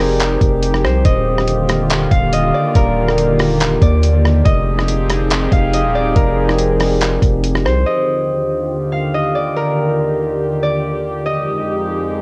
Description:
hip hop, atmospheric cloud-rap; 141 BPM; 4/4; half-time; Eb major; A4 = 440 Hz
concert harp; melody; 0.0-12.2 s; Bb4 to F5; -21 LUFS; equal; low-pass filter, analog delay
warbly tape-like pad; sustained chords; 0.0-12.2 s; Eb2 to Ab4; -22 LUFS; equal; chorus, built-in reverb, sidechain pumping, cassette tape
long sustained 808-style bass; bass; 0.0-7.8 s; Eb1 to Eb2; -19 LUFS; equal
lo-fi sampler-style drum kit; drums; 0.0-7.8 s; handclaps, hi-hat, kick drum, rim click; -19 LUFS; equal; cassette tape
light reverb; home recording on cassette; -16 LUFS; mono
0.0-7.9 A section; 7.9-12.2 B section
0.0 Fm7; 1.1 Ebmaj7; 4.5 Fm7; 7.9 Ebmaj7; 11.3 Fm7

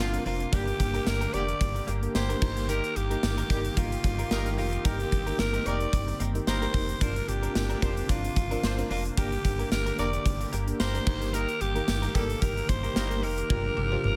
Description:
1980s-style pop; 111 BPM; 4/4; swing 55% on 16ths; A4 = 440 Hz
breathy alto saxophone; melody; 0.0-14.2 s; F4 to D5; -35 LUFS; equal
FM electric piano with tremolo; accompaniment; 0.0-14.2 s; Bb3 to C5; -38 LUFS; equal; phaser
brassy analog pad; sustained chords; 0.0-14.2 s; C3 to G4; -42 LUFS; equal; chorus
direct-recorded clean electric guitar; riff; 0.0-14.1 s; F3 to Bb4; -44 LUFS; equal
warm horn section; stabs; 0.0-13.6 s; D3 to C5; -44 LUFS; equal; tape echo
round analog bass; bass; 0.0-14.2 s; F1 to G1; -34 LUFS; equal
gated 80s drum kit; drums; 0.1-14.2 s; crash cymbal, hi-hat, kick drum, snare drum, tambourine, toms; -32 LUFS; equal; gated reverb
marimba with hard mallets; second line; 13.8-14.2 s; D4; -46 LUFS; equal
studio reverb; -28 LUFS; mono
0.0-14.2 A section
drum fill 13.5-14.2
0.0 Bbadd9; 0.5 Gm; 2.4 Eb; 7.0 Bbadd9; 9.2 Gm; 11.1 Eb/G; 13.5 Gm7

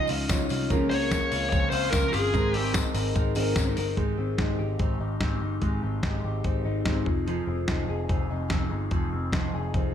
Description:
jangly indie pop; 146 BPM; 4/4; straight; Ab major; A4 = 439 Hz
bluesy overdriven lead guitar; melody; 0.0-2.7 s; Ab4 to Db5; -28 LUFS; equal; distortion, digital delay
fingerpicked steel-string acoustic guitar; accompaniment; 0.0-9.9 s; Db3 to Bb4; -34 LUFS; right 7 dB
warm upright piano; accompaniment; 0.0-4.0 s; C4 to Db5; -34 LUFS; right 7 dB
electric guitar through a small old amp; arpeggios; 0.0-9.9 s; Db3 to Bb4; -31 LUFS; left 5 dB; phaser
vintage muted picked electric bass; bass; 0.0-9.9 s; F1 to Db2; -30 LUFS; equal
dusty soul sampler-style drum kit; drums; 0.1-9.8 s; hi-hat, kick drum, snare drum; -28 LUFS; equal
tambourine; percussion; 0.1-3.9 s; -40 LUFS; left 7 dB
light reverb; -24 LUFS; side -9 dB against mid
0.0-4.0 A section; 4.0-9.9 B section
upright piano fill 0.1-0.7
0.0 Dbadd9; 0.7 Bbmadd9/Db; 2.3 Abadd9; 4.0 Abmaj7; 7.1 Fm7

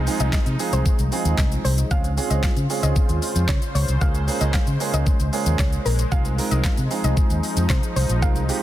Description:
dance-pop; 114 BPM; 4/4; straight; A4 = 443 Hz
sweeping resonant pad; sustained chords; 0.0-8.6 s; Db3 to C5; -30 LUFS; left 2 dB; chorus, sidechain pumping
vintage muted fingered electric bass; bass; 0.0-8.5 s; Bb1 to Db3; -21 LUFS; equal; sidechain pumping
warm grand piano; accompaniment; 0.1-8.6 s; Ab3 to Bb4; -28 LUFS; right 7 dB; sidechain pumping
pop drum kit; drums; 0.1-8.6 s; handclaps, hi-hat, kick drum, shaker, snare drum; -22 LUFS; equal
soft round pluck; melody; 0.2-8.3 s; Bb4 to F5; -31 LUFS; left 2 dB; chorus, ping-pong delay
little or no reverb; dense, heavily limited modern master; -18 LUFS; side -13 dB against mid
0.0-8.6 A section
0.0 Fm7; 1.9 Dbmaj7; 4.0 Bbm7/Db; 6.1 Fm7

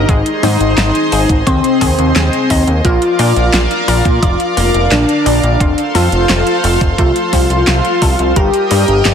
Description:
synthwave; 87 BPM; 4/4; straight; Bb major; A4 = 442 Hz
wide unison lead; melody; 0.0-9.1 s; C4 to G4; -16 LUFS; equal; cassette tape, digital delay
FM electric piano with soft pad layer; second line; 0.0-9.1 s; C4 to G4; -22 LUFS; left 3 dB
chorused pulse-width pad; sustained chords; 0.0-9.1 s; Ab4 to Eb6; -18 LUFS; equal; sidechain pumping
analog pluck; arpeggios; 0.0-9.1 s; G3 to D5; -22 LUFS; left 5 dB; chorus, cassette tape, tape echo
fat analog bass; bass; 0.0-9.1 s; F1 to Bb2; -15 LUFS; equal
electronic kick drum; drums; 0.1-8.5 s; -15 LUFS; equal
pop drum kit; drums; 0.1-9.1 s; handclaps, hi-hat, snare drum; -19 LUFS; right 1 dB; overdrive
light reverb, digital ambience; dense, heavily limited modern master; -10 LUFS; side -8 dB against mid
0.0-9.1 A section
0.1 Ab; 2.8 Bb; 5.6 F; 8.4 Eb/G

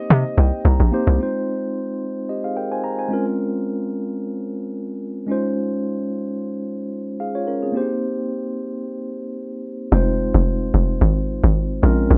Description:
amapiano; 110 BPM; 4/4; swing 55% on 16ths; F minor; A4 = 440 Hz
warm grand piano; melody; 0.0-0.6 s; Eb5; -35 LUFS; equal; digital delay
mellow tine electric piano; accompaniment; 0.0-12.2 s; Ab3 to Bb5; -26 LUFS; equal
tight log drum bass; bass; 0.1-1.2, 9.9-12.2 s; F1 to C3; -18 LUFS; equal
little or no reverb; -22 LUFS; mono
0.0-1.2 A section; 1.2-9.9 B section; 9.9-12.2 A section
drop 0.0-1.2, 9.9-12.2; tine electric piano fill 0.1-1.2
0.0 Cm7; 1.2 Fm7; 3.1 Bbm9; 5.3 Dbmaj9; 7.7 Cm7; 9.9 Fm7

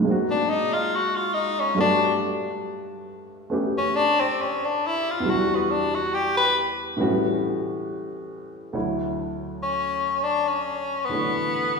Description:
jazz ballad; 69 BPM; 4/4; swing 69% on 8ths; D major; A4 = 440 Hz
warm upright piano; accompaniment; 0.0-11.8 s; D2 to C#5; -26 LUFS; equal
edgy tenor saxophone; melody; 0.3-11.8 s; B3 to B4; -22 LUFS; left 3 dB
wet scoring stage reverb, RT60 2.1 s; recorded in a church or concert hall, studio reverb; -21 LUFS; side -4 dB against mid
0.0-8.7 A section; 8.7-11.8 B section
tenor saxophone solo 0.0-8.7
0.0 G#9; 1.8 Gmaj9; 5.3 Em7; 7.0 A13; 8.7 Dmaj7

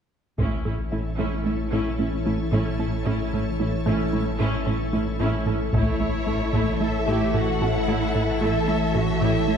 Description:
cinematic, hybrid orchestral and electronic film score; 112 BPM; 5/4; straight; A4 = 439 Hz
rich symphonic viola section; accompaniment; 0.4-9.6 s; A3 to E4; -30 LUFS; equal
soft additive organ-like pad; sustained chords; 0.9-9.6 s; E3 to C#5; -29 LUFS; equal; ensemble chorus, built-in reverb
wide unison pluck; arpeggios; 0.4-9.6 s; A3 to A4; -32 LUFS; right 1 dB; digital delay
plucky analog bass; riff; 0.4-9.6 s; A2 to A3; -27 LUFS; right 1 dB
pure sine sub bass; bass; 0.4-9.6 s; A1; -30 LUFS; left 1 dB
warm symphonic cello section; bass; 0.4-9.6 s; A2 to A4; -31 LUFS; right 2 dB
taiko ensemble; drums; 0.4-1.4, 5.7-6.8 s; -30 LUFS; left 1 dB
warm symphonic violin section; melody; 5.7-9.6 s; C#5 to F#5; -31 LUFS; left 1 dB
warm symphonic violin section; second line; 5.7-9.6 s; A4 to E5; -33 LUFS; left 4 dB
mellow French horn section; sustained chords; 5.7-9.6 s; A3; -32 LUFS; left 1 dB
wet scoring stage reverb, RT60 1.7 s; heard from further back in the room; -21 LUFS; side -7 dB against mid
0.4-5.7 A section; 5.7-9.6 B section
0.4 A

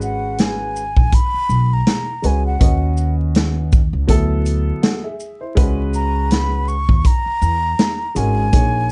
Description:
hip hop, jazz-hop; 81 BPM; 4/4; swing 58% on 16ths; A4 = 439 Hz
breathy mellow concert flute; melody; 0.0-8.9 s; F#5 to C#6; -24 LUFS; equal
dark baby grand piano; accompaniment; 0.0-8.9 s; F#3 to F#5; -26 LUFS; equal
upright bass; bass; 0.0-8.9 s; G#1 to E2; -21 LUFS; equal
vintage drum kit; drums; 0.0-8.9 s; hi-hat, kick drum, shaker, snare drum; -18 LUFS; equal
light reverb; vinyl crackle, nothing above 10.5 kHz; -17 LUFS; mono
0.0-8.9 A section
0.0 G#m9; 2.6 C#9sus4; 4.1 Dadd9; 5.6 C#m7

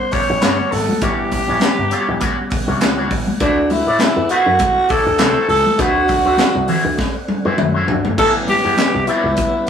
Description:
funk; 100 BPM; 4/4; swing 56% on 16ths; A mixolydian; A4 = 440 Hz
growling tenor saxophone; melody; 0.0-9.7 s; D4 to C#5; -16 LUFS; equal
mellow tonewheel organ; sustained chords; 0.0-9.7 s; B2 to F#5; -28 LUFS; right 1 dB; slow rotary speaker, chorus vibrato
electric guitar with an envelope filter; accompaniment; 0.1-9.7 s; G3 to D5; -22 LUFS; left 2 dB; spring reverb
slap bass with an envelope filter; bass; 0.1-9.3 s; G1 to A2; -22 LUFS; equal
crisp fusion drum kit; drums; 0.1-9.7 s; crash cymbal, handclaps, hi-hat, kick drum, snare drum, toms; -20 LUFS; left 1 dB
congas; percussion; 0.4-9.5 s; -24 LUFS; right 1 dB
wet studio reverb, RT60 0.7 s; rough rehearsal-room recording; -14 LUFS; side -8 dB against mid
0.0-8.2 A section; 8.2-9.7 A section
drum fill 7.0-8.2
0.0 A13; 3.4 D9; 8.2 A13

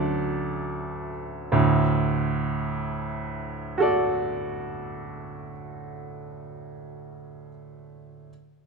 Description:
classical, virtuoso piano study; 53 BPM (dotted quarters); 6/8; rubato; D major; A4 = 439 Hz
bright baby grand piano; solo; 0.0-8.3 s; D2 to D5; -25 LUFS; right 2 dB
wet recital hall reverb, RT60 1.8 s; close, detailed microphones; -24 LUFS; side -4 dB against mid
0.0-1.5 A section; 1.5-6.0 B section
slowing down 0.0-1.5
0.0 D

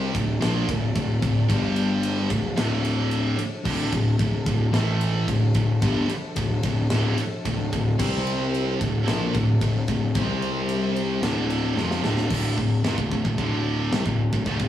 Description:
heavy metal; 111 BPM; 4/4; straight; D minor; A4 = 442 Hz
muted chamber string section; sustained chords; 0.0-12.3 s; E3 to D5; -35 LUFS; equal
heavy high-gain guitar; riff; 0.0-14.7 s; D2 to C4; -29 LUFS; right 6 dB; distortion
sludgy distorted guitar; riff; 0.0-14.7 s; D2 to C4; -26 LUFS; left 3 dB; overdrive
fuzz picked electric bass; bass; 0.0-14.7 s; D1 to C2; -26 LUFS; equal; overdrive
tight metal drum kit; drums; 0.1-14.7 s; china cymbal, crash cymbal, kick drum, ride cymbal, snare drum; -29 LUFS; equal
moderate stone room reverb, RT60 0.9 s; rough rehearsal-room recording, warm saturation, studio reverb; -21 LUFS; side -11 dB against mid
0.0-12.3 A section; 12.3-14.7 B section
half time 0.0-12.3; drum fill 11.8-12.3
0.1 Dm; 1.5 G5; 2.3 Dm; 4.7 A5; 5.3 Dm; 8.0 C5; 8.8 Dm; 10.2 C5; 11.2 Dm

